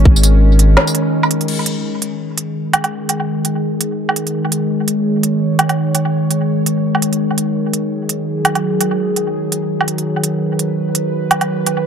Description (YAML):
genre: half-time drum and bass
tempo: 168 BPM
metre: 4/4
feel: swing 58% on 16ths, half-time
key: G# minor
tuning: A4 = 440 Hz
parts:
  - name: bowed-like drone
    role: sustained chords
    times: 0.0-11.9 s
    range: D#3 to C#5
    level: -17 LUFS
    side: equal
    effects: built-in reverb, sidechain pumping
  - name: saturated sub bass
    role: bass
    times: 0.0-0.8 s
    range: G#1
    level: -10 LUFS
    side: equal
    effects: tube saturation
  - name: organic electronic drum kit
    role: drums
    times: 0.2-11.7 s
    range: crash cymbal, hi-hat, snare drum, tambourine, woodblock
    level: -17 LUFS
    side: right 2 dB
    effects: overdrive, analog delay
room: moderate spring reverb, RT60 2.0 s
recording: echo-heavy mix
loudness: -14 LUFS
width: side -8 dB against mid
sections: 0.0-1.5 A section; 1.5-11.9 B section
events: drop 0.0-1.5; break 0.8-1.5; filter sweep on synth drone 1.5-11.9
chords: 0.0 G#5